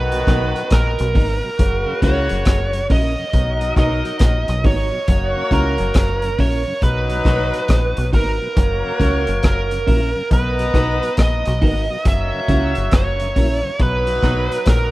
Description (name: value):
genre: roots reggae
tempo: 69 BPM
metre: 4/4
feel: swing 64% on 16ths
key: unclear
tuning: A4 = 440 Hz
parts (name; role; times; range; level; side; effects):
- bluesy overdriven lead guitar; melody; 0.0-14.9 s; A#4 to E5; -22 LUFS; right 2 dB; distortion, dub echo
- warm horn section; second line; 0.0-14.9 s; C#3 to A#5; -25 LUFS; left 2 dB; dub echo
- deep dub fingered electric bass; bass; 0.0-14.9 s; F#1 to C#2; -20 LUFS; equal; none
- mellow tonewheel organ; accompaniment; 0.1-14.6 s; F#2 to E4; -31 LUFS; left 1 dB; chorus vibrato, slow rotary speaker
- crunchy breakbeat drum kit; drums; 0.1-14.9 s; hi-hat, kick drum, rim click; -18 LUFS; equal; none
- clean electric guitar; accompaniment; 0.3-14.5 s; B3 to A#4; -27 LUFS; right 3 dB; lush chorus, dub echo
room: small room ambience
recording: rough home demo mix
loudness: -15 LUFS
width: side -18 dB against mid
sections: 0.0-14.9 A section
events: none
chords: 0.0 Bmaj7; 1.6 F#7; 3.3 Bmaj7; 5.1 F#7; 6.8 Bmaj7; 8.6 F#7; 10.3 Bmaj7; 12.1 F#7; 13.8 Bmaj7